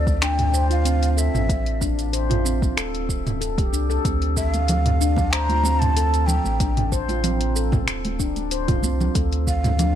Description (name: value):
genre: organic downtempo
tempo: 94 BPM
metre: 4/4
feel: swing 53% on 16ths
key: unclear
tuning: A4 = 441 Hz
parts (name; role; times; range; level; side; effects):
- breathy hollow ney; melody; 0.0-10.0 s; D5 to Bb5; -27 LUFS; right 1 dB; vintage 12-bit sampler grit, tape echo
- handpan; arpeggios; 0.0-10.0 s; C4 to C5; -26 LUFS; left 1 dB; ping-pong delay
- warm sub bass; bass; 0.0-10.0 s; D1 to D2; -22 LUFS; equal; tube saturation, sidechain pumping
- deep house drum kit; drums; 0.1-9.9 s; finger snaps, hi-hat, shaker, toms; -26 LUFS; equal; overdrive
- electronic kick drum; drums; 0.1-9.6 s; none; -24 LUFS; equal; overdrive
- congas; percussion; 4.5-9.9 s; none; -28 LUFS; right 1 dB; none
room: light reverb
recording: none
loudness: -19 LUFS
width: side -10 dB against mid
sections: 0.0-10.0 A section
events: none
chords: 0.0 D7(no3); 4.0 Csus4